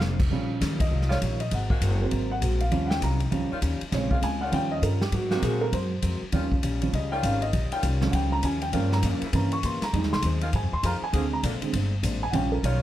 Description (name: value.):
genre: jazz, big band swing.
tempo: 200 BPM.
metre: 4/4.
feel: swing 62% on 8ths.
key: Eb mixolydian.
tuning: A4 = 440 Hz.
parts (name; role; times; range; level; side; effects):
picked steel-string acoustic guitar; accompaniment; 0.0-12.8 s; G2 to Bb4; -35 LUFS; left 4 dB; none.
upright bass; bass; 0.0-12.8 s; F1 to Bb2; -27 LUFS; equal; none.
swinging big-band drum kit; drums; 0.0-12.7 s; crash cymbal, hi-hat, kick drum, ride cymbal, snare drum; -30 LUFS; equal; none.
warm concert grand piano; accompaniment; 0.3-12.8 s; Db3 to Db6; -28 LUFS; right 2 dB; none.
edgy saxophone section; sustained chords; 1.1-12.8 s; C3 to Ab4; -36 LUFS; equal; none.
room: little or no reverb.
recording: dark, warm production.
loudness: -23 LUFS.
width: side -13 dB against mid.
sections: 0.3-12.8 A section.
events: grand piano solo 0.3-12.8.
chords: 0.3 Eb9; 1.5 Ab9; 2.7 Eb9; 3.9 Bbm7; 4.5 Eb9; 5.1 Ab9; 6.3 Eb9; 8.7 Gm7b5; 9.3 C7b9; 9.9 Fm7; 11.1 Bb9.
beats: 0.01 | 0.31 0.61 0.92 1.22 | 1.52 1.82 2.12 2.42 | 2.72 3.02 3.32 3.62 | 3.92 4.22 4.53 4.83 | 5.13 5.43 5.73 6.03 | 6.33 6.63 6.93 7.23 | 7.53 7.83 8.13 8.43 | 8.73 9.03 9.33 9.63 | 9.93 10.23 10.53 10.84 | 11.13 11.44 11.73 12.04 | 12.34 12.64.